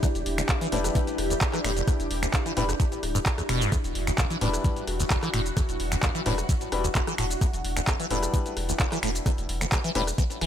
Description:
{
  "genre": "acid house",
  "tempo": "130 BPM",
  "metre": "4/4",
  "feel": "straight",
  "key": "unclear",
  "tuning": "A4 = 441 Hz",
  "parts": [
    { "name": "string machine, full ensemble", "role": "sustained chords", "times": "0.0-10.5 s", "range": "D4 to G4", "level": "-33 LUFS", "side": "equal", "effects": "ensemble chorus, vintage 12-bit sampler grit, sidechain pumping" },
    { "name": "liquid acid bass", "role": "riff", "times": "0.0-10.5 s", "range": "E1 to E3", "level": "-30 LUFS", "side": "equal", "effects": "phaser, tube saturation, lush chorus, sidechain pumping, digital delay" },
    { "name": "electronic kick drum", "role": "drums", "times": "0.0-10.3 s", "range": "none", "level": "-26 LUFS", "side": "equal", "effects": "overdrive" },
    { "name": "punchy analog drum machine", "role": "drums", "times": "0.0-10.5 s", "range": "finger snaps, handclaps, hi-hat, rim click, shaker", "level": "-31 LUFS", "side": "equal", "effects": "none" },
    { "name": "warm sub bass", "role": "bass", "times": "0.1-10.5 s", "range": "D1 to E1", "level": "-32 LUFS", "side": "equal", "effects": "sidechain pumping" },
    { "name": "clear grand piano", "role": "stabs", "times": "0.7-10.0 s", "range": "G3 to B4", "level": "-33 LUFS", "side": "left 5 dB", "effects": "digital delay" }
  ],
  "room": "little or no reverb",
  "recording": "none",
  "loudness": "-24 LUFS",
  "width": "side -10 dB against mid",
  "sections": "0.0-10.5 A section",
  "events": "none",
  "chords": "0.0 Em7",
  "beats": "| 0.03 0.49 0.95 1.41 | 1.88 2.34 2.80 3.26 | 3.72 4.18 4.64 5.11 | 5.57 6.03 6.49 6.95 | 7.41 7.88 8.34 8.80 | 9.26 9.72 10.18"
}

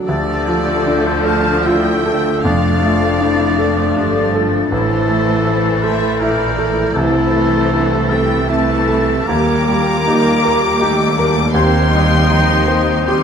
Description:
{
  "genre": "classical",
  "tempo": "79 BPM",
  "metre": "3/4",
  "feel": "rubato",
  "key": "D minor",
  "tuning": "A4 = 440 Hz",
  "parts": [
    { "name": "clear concert grand piano", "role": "melody", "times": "0.0-13.2 s", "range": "A1 to C5", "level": "-18 LUFS", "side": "right 1 dB", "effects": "none" },
    { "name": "warm chamber violin section", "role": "second line", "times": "0.0-13.2 s", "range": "C4 to Bb4", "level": "-24 LUFS", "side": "left 5 dB", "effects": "none" },
    { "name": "rich studio violin section", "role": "melody", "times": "0.1-13.2 s", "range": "C5 to D6", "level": "-23 LUFS", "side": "left 4 dB", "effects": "none" },
    { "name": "clear oboe", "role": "second line", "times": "0.1-13.2 s", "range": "A4 to Bb5", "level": "-23 LUFS", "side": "right 2 dB", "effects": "none" },
    { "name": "mellow clarinet", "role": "second line", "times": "0.1-13.2 s", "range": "C4 to G4", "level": "-26 LUFS", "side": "left 2 dB", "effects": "none" },
    { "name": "mellow flute section", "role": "second line", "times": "0.1-13.1 s", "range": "Bb5 to A6", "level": "-25 LUFS", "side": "left 4 dB", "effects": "none" },
    { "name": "rich chamber viola section", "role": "accompaniment", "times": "0.1-13.2 s", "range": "Eb3 to Eb4", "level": "-21 LUFS", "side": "equal", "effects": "none" },
    { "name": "dark French horn section", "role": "sustained chords", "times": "0.1-13.2 s", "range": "A3 to G4", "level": "-22 LUFS", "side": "left 3 dB", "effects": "none" },
    { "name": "clear studio double bass section", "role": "bass", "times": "0.1-13.2 s", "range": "F1 to Eb2", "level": "-22 LUFS", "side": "right 3 dB", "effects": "none" },
    { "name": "warm symphonic cello section", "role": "bass", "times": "0.1-13.2 s", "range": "Eb2 to D3", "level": "-23 LUFS", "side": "right 3 dB", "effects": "none" },
    { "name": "timpani", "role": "percussion", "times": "2.4-3.5 s", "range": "F2", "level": "-24 LUFS", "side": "right 1 dB", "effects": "none" }
  ],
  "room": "wet scoring stage reverb, RT60 1.5 s",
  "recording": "lossy compression artefacts",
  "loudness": "-12 LUFS",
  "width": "side -7 dB against mid",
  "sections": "0.1-13.2 A section",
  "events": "none",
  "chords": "0.1 Dm; 2.4 Dm/F; 4.7 Am; 7.0 Am/C; 9.3 Ebmaj7; 11.5 Cm/Eb",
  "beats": "| 0.06 0.86 1.66 | 2.43 3.20 3.97 | 4.72 5.46 6.22 | 6.96 7.73 8.49 | 9.29 10.06 10.80 | 11.54 12.29 13.06"
}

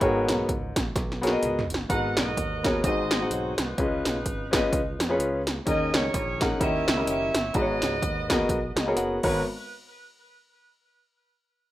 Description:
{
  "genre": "uptempo gospel",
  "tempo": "127 BPM",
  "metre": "4/4",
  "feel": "swing 58% on 8ths",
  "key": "G# minor",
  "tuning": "A4 = 435 Hz",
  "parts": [
    { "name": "warm concert grand piano", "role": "accompaniment", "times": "0.0-9.4 s", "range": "G#1 to A#5", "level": "-26 LUFS", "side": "left 1 dB", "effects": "none" },
    { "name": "fingered electric bass", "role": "bass", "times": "0.0-9.4 s", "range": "F#1 to E#2", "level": "-34 LUFS", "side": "right 1 dB", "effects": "none" },
    { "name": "80s electronic pad drums", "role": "drums", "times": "0.0-9.3 s", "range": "crash cymbal, hi-hat, kick drum, snare drum, toms", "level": "-28 LUFS", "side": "right 1 dB", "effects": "gated reverb on snare and toms" },
    { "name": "clear saxophone section", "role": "melody", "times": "1.9-9.4 s", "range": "D#4 to F#5", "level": "-31 LUFS", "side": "right 2 dB", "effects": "tape echo" }
  ],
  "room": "moderate studio reverb, RT60 0.6 s",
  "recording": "rough home demo mix",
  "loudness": "-23 LUFS",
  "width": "side -14 dB against mid",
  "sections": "0.0-1.9 A section; 1.9-9.4 B section; 9.4-11.3 C section",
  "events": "drum fill 1.0-1.9, 9.0-9.4; grand piano fill 8.5-9.4",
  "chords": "0.0 G#m11; 1.9 G#m9; 2.8 G#7; 3.8 C#9; 5.7 D#7sus4; 6.6 D#7b9; 7.5 G#m11; 9.4 N.C.",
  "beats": "| 0.01 0.48 0.96 1.43 | 1.90 2.37 2.84 3.31 | 3.78 4.25 4.72 5.20 | 5.67 6.14 6.61 7.08 | 7.55 8.02 8.49 8.96"
}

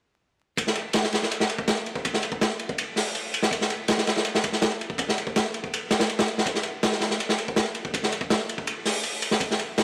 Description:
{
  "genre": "drum and bass",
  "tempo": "163 BPM",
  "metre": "4/4",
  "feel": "straight",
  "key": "none",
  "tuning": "none",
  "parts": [
    { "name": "raw garage drum kit", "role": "drums", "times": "0.6-9.8 s", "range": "hi-hat, kick drum, ride cymbal, snare drum", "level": "-26 LUFS", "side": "equal", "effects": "high-pass filter on kick, high-pass filter on cymbals, high-pass filter on hats, high-pass filter on snare, high-pass filter on room" }
  ],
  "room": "moderate echo chamber reverb, RT60 2.0 s",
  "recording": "dark, warm production, vinyl crackle",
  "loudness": "-26 LUFS",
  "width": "mono",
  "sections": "0.6-9.8 A section",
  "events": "none",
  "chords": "none",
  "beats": "| 0.57 0.94 1.31 1.68 | 2.04 2.41 2.78 3.15 | 3.52 3.89 4.25 4.62 | 4.99 5.36 5.73 6.09 | 6.46 6.83 7.20 7.57 | 7.93 8.30 8.67 9.04 | 9.41 9.78"
}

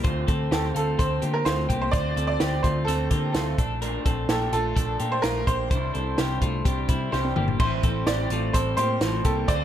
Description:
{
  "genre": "jangly indie pop",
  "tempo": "127 BPM",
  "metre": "4/4",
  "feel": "straight",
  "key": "D minor",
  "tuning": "A4 = 440 Hz",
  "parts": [
    { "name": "electric guitar through a small old amp", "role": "accompaniment", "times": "0.0-9.6 s", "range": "A2 to A4", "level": "-32 LUFS", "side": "right 6 dB", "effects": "none" },
    { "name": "twelve-string electric guitar", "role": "arpeggios", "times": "0.0-9.6 s", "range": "G3 to C5", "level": "-30 LUFS", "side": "left 5 dB", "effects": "none" },
    { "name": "vintage muted picked electric bass", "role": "bass", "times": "0.0-9.6 s", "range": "G1 to D3", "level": "-28 LUFS", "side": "equal", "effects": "none" },
    { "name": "compact cocktail drum kit", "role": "drums", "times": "0.0-9.6 s", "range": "crash cymbal, hi-hat, kick drum, snare drum, toms", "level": "-26 LUFS", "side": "equal", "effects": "none" },
    { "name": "bright upright piano", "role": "melody", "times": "0.5-9.6 s", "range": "A4 to D5", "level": "-28 LUFS", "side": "right 2 dB", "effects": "ping-pong delay" }
  ],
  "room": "moderate club reverb, RT60 0.8 s",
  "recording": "none",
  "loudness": "-22 LUFS",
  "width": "side -10 dB against mid",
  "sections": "0.0-7.6 A section; 7.6-9.6 B section",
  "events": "drum fill 7.1-7.6",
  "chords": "0.0 Dm7; 3.6 Bbmaj7; 5.7 Cadd9; 7.6 Am7",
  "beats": "| 0.04 0.51 0.99 1.46 | 1.93 2.40 2.88 3.35 | 3.82 4.29 4.77 5.24 | 5.71 6.18 6.65 7.12 | 7.60 8.07 8.54 9.01 | 9.48"
}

